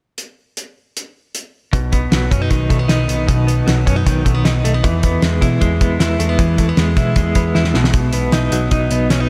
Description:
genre	jangly indie pop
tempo	155 BPM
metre	4/4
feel	straight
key	unclear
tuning	A4 = 442 Hz
part	cloth-damped thuddy drum kit	drums	0.2-9.2 s	hi-hat, kick drum, snare drum	-20 LUFS	equal	none
part	direct-recorded clean electric guitar	arpeggios	1.7-9.3 s	B2 to E4	-20 LUFS	equal	tremolo, analog delay
part	hollow-body short-scale picked electric bass	bass	1.7-9.3 s	B1 to B2	-20 LUFS	equal	none
room	moderate huge ambient reverb, RT60 7.3 s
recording	dreamy mix soaked in reverb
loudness	-16 LUFS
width	mono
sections	0.2-1.7 A section; 1.7-7.9 B section; 7.9-9.3 C section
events	drum fill 7.6-7.9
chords	0.2 N.C.; 1.7 B; 4.8 E; 7.7 N.C.; 7.9 B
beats	| 0.17 0.56 0.95 1.34 | 1.73 2.12 2.50 2.89 | 3.28 3.67 4.06 4.45 | 4.83 5.22 5.61 6.00 | 6.39 6.78 7.16 7.55 | 7.94 8.33 8.72 9.11

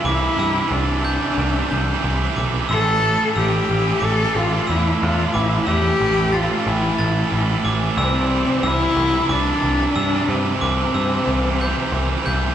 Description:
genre	post-rock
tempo	91 BPM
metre	4/4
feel	straight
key	unclear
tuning	A4 = 438 Hz
part	rich cello	melody	0.0-12.5 s	C4 to A4	-22 LUFS	left 2 dB	none
part	pedal steel guitar	sustained chords	0.0-12.5 s	E4 to C6	-34 LUFS	left 2 dB	none
part	glockenspiel with brass mallets	arpeggios	0.0-12.5 s	D6 to A6	-27 LUFS	right 2 dB	none
part	cranked stack guitar	riff	0.0-12.5 s	A2 to E3	-22 LUFS	right 3 dB	overdrive
part	growling picked electric bass	bass	0.0-12.5 s	A1 to G2	-22 LUFS	equal	overdrive
room	wet recital hall reverb, RT60 1.6 s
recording	recorded in a church or concert hall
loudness	-17 LUFS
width	side -10 dB against mid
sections	0.0-12.5 A section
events	none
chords	0.0 Cadd9; 2.7 Am; 8.0 Cadd9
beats	| 0.05 0.71 1.38 2.04 | 2.70 3.36 4.02 4.68 | 5.34 6.00 6.66 7.32 | 7.98 8.64 9.30 9.96 | 10.62 11.28 11.94

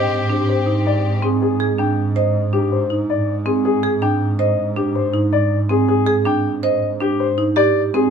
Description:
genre	classical, minimalist pattern music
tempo	161 BPM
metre	6/4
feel	straight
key	Ab lydian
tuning	A4 = 440 Hz
part	dark grand piano	melody	0.0-8.1 s	G4 to G5	-21 LUFS	left 10 dB	none
part	clear clarinet	second line	0.0-1.2 s	G4	-26 LUFS	equal	none
part	clear chamber violin section	sustained chords	0.0-1.2 s	C4 to G4	-26 LUFS	left 7 dB	none
part	marimba with medium hard mallets	arpeggios	0.0-8.1 s	C4 to C5	-20 LUFS	right 7 dB	none
part	rich chamber double bass section	bass	0.0-8.1 s	Ab2	-21 LUFS	right 2 dB	none
room	little or no reverb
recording	close, detailed microphones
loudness	-16 LUFS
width	side -7 dB against mid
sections	0.0-8.1 A section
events	none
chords	0.0 Abmaj7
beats	0.30 0.67 1.04 | 1.42 1.79 2.16 2.53 2.91 3.28 | 3.65 4.02 4.40 4.77 5.14 5.51 | 5.89 6.26 6.63 7.01 7.38 7.75

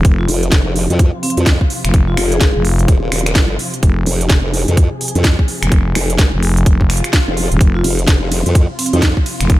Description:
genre	bass house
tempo	127 BPM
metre	4/4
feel	swing 61% on 16ths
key	F minor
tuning	A4 = 440 Hz
part	warm studio string section	sustained chords	0.0-9.6 s	C3 to Ab4	-26 LUFS	left 1 dB	sidechain pumping, low-pass filter
part	growling FM bass	bass	0.0-9.6 s	Eb1 to F1	-14 LUFS	equal	tube saturation, sidechain pumping
part	electronic kick drum	drums	0.0-9.6 s	none	-13 LUFS	equal	none
part	garage drum kit	drums	0.0-9.6 s	finger snaps, hi-hat, ride cymbal, snare drum	-19 LUFS	right 1 dB	none
part	vibraphone with medium mallets	melody	0.2-2.5, 7.8-9.1 s	C4 to Ab4	-22 LUFS	left 1 dB	ping-pong delay
part	formant-sweep wobble bass	bass	0.3-9.1 s	Eb1 to F2	-16 LUFS	equal	chorus, tube saturation, sidechain pumping
part	swell	sound effects	6.8-7.6 s	none	-27 LUFS	left 1 dB	none
room	little or no reverb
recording	none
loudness	-12 LUFS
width	side -16 dB against mid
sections	0.0-9.6 A section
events	swell 6.8-7.6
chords	0.0 F5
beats	| 0.05 0.52 0.99 1.47 | 1.94 2.41 2.88 3.35 | 3.83 4.30 4.77 5.25 | 5.72 6.19 6.66 7.13 | 7.61 8.08 8.55 9.03 | 9.50

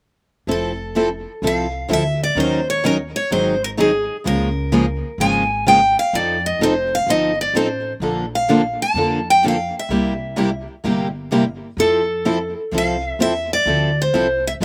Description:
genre	acoustic string swing (jazz manouche)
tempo	127 BPM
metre	4/4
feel	swing 66% on 8ths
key	F major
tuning	A4 = 440 Hz
part	picked steel-string acoustic guitar	melody	0.5-14.5 s	Ab4 to A5	-21 LUFS	equal	none
part	picked steel-string acoustic guitar	accompaniment	0.5-14.6 s	C3 to Bb4	-23 LUFS	equal	none
part	picked steel-string acoustic guitar	accompaniment	0.5-14.6 s	C3 to Bb4	-27 LUFS	equal	none
part	upright bass	bass	0.5-14.6 s	F1 to F2	-29 LUFS	equal	none
room	little or no reverb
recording	recorded outdoors, with no room sound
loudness	-19 LUFS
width	mono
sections	0.5-14.6 A section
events	none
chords	0.5 Fmaj7; 2.4 Ebm7; 3.3 Ab7; 4.3 Db6; 6.1 F9; 8.0 Bbmaj7; 9.9 C7; 11.8 Fmaj7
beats	| 0.49 0.96 1.43 1.90 | 2.38 2.85 3.32 3.79 | 4.26 4.73 5.20 5.67 | 6.14 6.61 7.08 7.55 | 8.02 8.49 8.96 9.43 | 9.90 10.37 10.84 11.31 | 11.78 12.26 12.73 13.20 | 13.67 14.14 14.62

